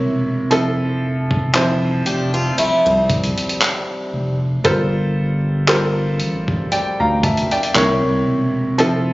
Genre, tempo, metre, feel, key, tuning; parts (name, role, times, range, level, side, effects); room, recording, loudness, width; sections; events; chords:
contemporary R&B; 58 BPM; 4/4; swing 54% on 16ths; A4 = 437 Hz
clear baby grand piano; accompaniment; 0.0-9.1 s; C3 to Bb5; -18 LUFS; equal
saturated sub bass; bass; 0.0-9.1 s; E1 to D2; -21 LUFS; equal
dusty soul sampler-style drum kit; drums; 0.5-9.0 s; handclaps, hi-hat, kick drum; -20 LUFS; equal
picked swing-style acoustic guitar; arpeggios; 2.1-4.4 s; G3 to G4; -19 LUFS; equal
light reverb, digital ambience; recorded on a phone in the room, club reverb, compression, nothing above 7.5 kHz; -15 LUFS; side -19 dB against mid
0.0-9.1 A section
0.0 C7b9; 0.5 Fmaj7; 4.6 Gm11; 7.7 C7b9